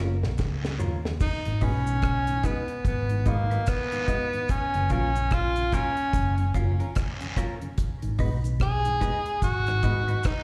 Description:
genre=roots reggae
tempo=73 BPM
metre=4/4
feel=swing 61% on 16ths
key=G# dorian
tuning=A4 = 440 Hz
part: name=breathy tenor saxophone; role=melody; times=0.0-10.4 s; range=A#3 to G#4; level=-31 LUFS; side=equal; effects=tape echo
part: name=clean electric guitar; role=accompaniment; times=0.0-10.2 s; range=C#4 to B4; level=-40 LUFS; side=equal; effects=phaser, slapback echo, tape echo
part: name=mellow tonewheel organ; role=accompaniment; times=0.0-10.2 s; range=F#2 to F#4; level=-38 LUFS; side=equal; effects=overdrive, chorus vibrato, slow rotary speaker, slapback echo
part: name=vintage muted fingered electric bass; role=bass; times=0.0-10.1 s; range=F#1 to D#2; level=-29 LUFS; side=equal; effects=none
part: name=deep reggae drum kit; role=drums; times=0.2-10.4 s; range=crash cymbal, hi-hat, kick drum, rim click, snare drum, toms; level=-30 LUFS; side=equal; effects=none
part: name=cabasa and guiro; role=percussion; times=0.4-10.4 s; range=none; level=-44 LUFS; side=equal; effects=none
room=small room ambience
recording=live gig heard through the venue's PA, recital hall reverb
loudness=-26 LUFS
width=mono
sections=0.0-1.2 A section; 1.2-10.4 B section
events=drum fill 0.0-1.2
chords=0.0 F#maj7; 1.2 G#m7; 4.5 F#maj7; 7.8 G#m7

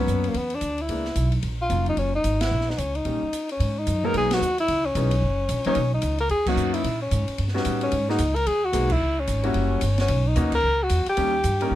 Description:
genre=jazz, small-group swing and bop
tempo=222 BPM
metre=4/4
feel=swing 61% on 8ths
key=Eb minor, G# minor from 3.6 s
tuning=A4 = 440 Hz
part: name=dark tenor saxophone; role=melody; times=0.0-11.8 s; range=Bb3 to A#4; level=-24 LUFS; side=left 1 dB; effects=none
part: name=warm concert grand piano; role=accompaniment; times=0.0-11.8 s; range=E3 to A#4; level=-27 LUFS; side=left 1 dB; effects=none
part: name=upright bass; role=bass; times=0.0-11.8 s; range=F1 to A#2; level=-25 LUFS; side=right 1 dB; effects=none
part: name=open jazz drum kit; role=drums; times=0.1-11.7 s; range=crash cymbal, hi-hat, kick drum, ride cymbal, snare drum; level=-33 LUFS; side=equal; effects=none
room=light reverb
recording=close, detailed microphones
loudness=-21 LUFS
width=side -13 dB against mid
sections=0.0-3.6 A section; 3.6-11.8 B section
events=band accent 2.4, 4.3, 6.4, 8.9, 10.5; break 3.3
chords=0.3 E7#11; 1.4 Ebm9; 2.5 Bbmadd11; 3.1 Eb7; 3.6 G#m7; 4.7 C#m7; 5.2 F#; 5.8 Bmaj9; 6.8 A#m7b5; 7.4 D#7alt; 7.9 G#m9; 9.0 C#m; 9.6 F#7b9; 10.1 Bmaj9; 11.2 D#7

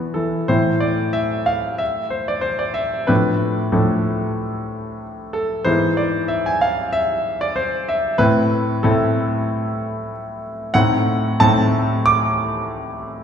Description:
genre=classical, romantic character piece for solo piano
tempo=93 BPM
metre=4/4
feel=rubato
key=A minor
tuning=A4 = 440 Hz
part: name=clear concert grand piano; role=solo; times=0.0-13.2 s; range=G#2 to D6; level=-17 LUFS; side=equal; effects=none
room=wet scoring stage reverb, RT60 2.0 s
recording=recorded in a church or concert hall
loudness=-17 LUFS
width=side -8 dB against mid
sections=0.5-13.2 A section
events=none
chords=0.5 A5; 3.1 Dm/A; 5.7 E/G#; 8.2 Am; 10.7 Adim7

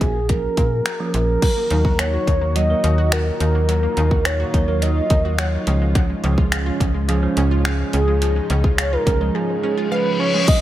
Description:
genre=dance-pop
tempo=106 BPM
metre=4/4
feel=straight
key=Eb minor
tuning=A4 = 441 Hz
part: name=mellow horn-like synth lead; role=melody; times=0.0-10.6 s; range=Ab4 to Eb5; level=-22 LUFS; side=equal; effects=chorus, analog delay
part: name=bell-like tine electric piano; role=accompaniment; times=0.0-10.5 s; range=F3 to Bb4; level=-25 LUFS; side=right 4 dB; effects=phaser, sidechain pumping, analog delay
part: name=slap-like FM bass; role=bass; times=0.0-9.3 s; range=Bb1 to Bb2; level=-20 LUFS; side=equal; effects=sidechain pumping
part: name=pop drum kit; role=drums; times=0.0-10.6 s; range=crash cymbal, finger snaps, hi-hat, kick drum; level=-21 LUFS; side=equal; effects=analog delay
part: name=lush unison pad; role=sustained chords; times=1.4-10.6 s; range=Ab2 to Gb4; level=-29 LUFS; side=equal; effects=chorus, sidechain pumping
part: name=wide unison pluck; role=arpeggios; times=1.4-10.4 s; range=F3 to Gb5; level=-31 LUFS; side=equal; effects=sidechain pumping, analog delay
part: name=reverse cymbal and impact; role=sound effects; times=9.7-10.6 s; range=none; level=-24 LUFS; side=left 3 dB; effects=none
room=light reverb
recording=echo-heavy mix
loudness=-16 LUFS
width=side -13 dB against mid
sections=0.0-1.4 A section; 1.4-10.5 B section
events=reverse cymbal 9.7-10.5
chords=0.0 Bbm7; 1.4 Ebm; 5.7 Db

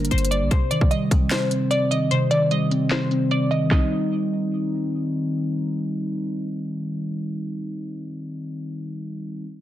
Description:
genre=hip hop, trap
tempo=150 BPM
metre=4/4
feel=half-time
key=C minor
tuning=A4 = 440 Hz
part: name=glassy wavetable pluck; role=melody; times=0.0-4.9 s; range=C5 to Eb5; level=-25 LUFS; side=equal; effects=chorus, digital delay
part: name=muted felt-like synth keys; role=accompaniment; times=0.0-9.4 s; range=C3 to Eb4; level=-23 LUFS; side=equal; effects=chorus
part: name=short 808-style bass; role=bass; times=0.0-0.5 s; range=G1 to Bb1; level=-23 LUFS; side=equal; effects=none
part: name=trap drum kit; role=drums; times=0.0-3.8 s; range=handclaps, hi-hat, kick drum, snare drum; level=-22 LUFS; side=equal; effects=none
room=light reverb, digital ambience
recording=dense, heavily limited modern master, low-pass filter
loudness=-21 LUFS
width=side -13 dB against mid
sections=0.5-3.7 A section; 3.7-6.9 B section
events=kick muted 2.1-3.7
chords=0.0 Gm; 0.5 Cm

